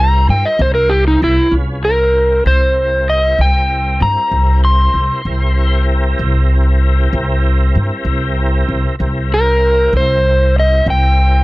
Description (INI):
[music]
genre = slow blues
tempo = 64 BPM (dotted quarters)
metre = 12/8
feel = straight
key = C mixolydian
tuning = A4 = 445 Hz
[part]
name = overdriven slide guitar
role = melody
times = 0.0-11.4 s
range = Eb4 to C6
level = -14 LUFS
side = equal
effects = none
[part]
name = tonewheel organ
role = sustained chords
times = 0.0-11.4 s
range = C4 to C5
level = -22 LUFS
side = equal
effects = chorus vibrato, slow rotary speaker
[part]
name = upright bass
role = bass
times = 0.0-11.4 s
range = C2 to G2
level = -13 LUFS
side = equal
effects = none
[sound]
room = little or no reverb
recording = dry, close 1970s-style studio recording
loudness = -11 LUFS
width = side -20 dB against mid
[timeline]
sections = 0.0-1.5 A section; 1.5-11.4 A section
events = electric slide guitar solo 0.0-11.4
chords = 0.0 C7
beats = 0.59 | 1.52 2.45 3.39 4.32 | 5.25 6.19 7.12 8.06 | 8.99 9.93 10.86